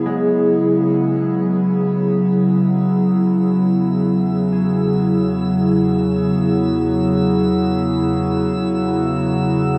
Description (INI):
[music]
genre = ambient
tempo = free time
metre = none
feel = none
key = unclear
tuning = A4 = 441 Hz
[part]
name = warbly tape-like pad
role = sustained chords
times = 0.0-9.8 s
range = C#3 to G#4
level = -18 LUFS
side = equal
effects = chorus, built-in reverb, shimmer reverb
[part]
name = concert harp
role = arpeggios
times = 0.1-7.7 s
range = G#3 to G#4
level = -27 LUFS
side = equal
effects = tape echo, shimmer reverb
[part]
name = deep rumbling drone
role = bass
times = 3.7-9.8 s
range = E2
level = -35 LUFS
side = equal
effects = built-in reverb, phaser
[part]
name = pedal harmonium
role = drone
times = 2.0-9.8 s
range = F#3 to F#4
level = -33 LUFS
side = equal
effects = none
[part]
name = drifting glass-harmonics texture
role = texture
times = 2.8-9.8 s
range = E6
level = -37 LUFS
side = equal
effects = chorus, built-in reverb, shimmer reverb
[sound]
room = wet huge ambient reverb, RT60 7.5 s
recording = none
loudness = -17 LUFS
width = mono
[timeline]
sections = 0.0-2.1 A section; 2.1-9.8 B section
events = fade-in on harp 2.1-9.8; fade-in on synth drone 2.1-9.8; fade-in on harmonium 2.1-9.8; fade-in on synth texture 2.1-9.8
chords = 0.0 E